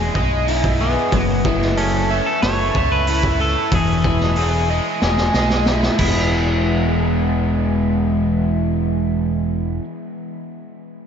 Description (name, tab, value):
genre	rock, shoegaze and dream pop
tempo	92 BPM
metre	4/4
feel	straight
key	E major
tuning	A4 = 440 Hz
part	clean electric guitar	melody	0.0-9.8 s	B3 to C#5	-25 LUFS	equal	spring reverb, ping-pong delay
part	crunchy overdriven guitar	riff	0.0-9.9 s	E3 to E5	-20 LUFS	equal	analog chorus
part	growling picked electric bass	bass	0.0-9.8 s	E1 to C#2	-21 LUFS	equal	overdrive
part	raw garage drum kit	drums	0.2-6.1 s	crash cymbal, hi-hat, kick drum, snare drum	-22 LUFS	equal	none
room	moderate huge ambient reverb, RT60 8.3 s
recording	dreamy mix soaked in reverb, nothing above 7.7 kHz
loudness	-16 LUFS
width	side -7 dB against mid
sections	0.0-6.3 A section; 6.3-8.9 B section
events	drum fill 5.0-6.3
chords	0.0 Emaj7; 1.1 F#m7; 3.7 Emaj7; 6.0 E